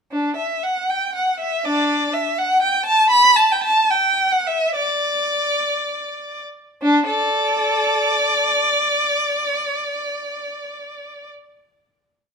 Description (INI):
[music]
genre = classical, baroque-style suite movement for unaccompanied violin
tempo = 53-83 BPM (dotted quarters)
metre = 6/8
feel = rubato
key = D major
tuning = A4 = 440 Hz
[part]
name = warm violin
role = solo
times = 0.1-11.3 s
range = D4 to B5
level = -17 LUFS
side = equal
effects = none
[sound]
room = moderate stone room reverb, RT60 1.3 s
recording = close, detailed microphones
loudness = -16 LUFS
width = side -6 dB against mid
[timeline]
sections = 0.1-6.8 A section; 6.8-11.2 final chord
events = slowing down 2.4-6.8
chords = none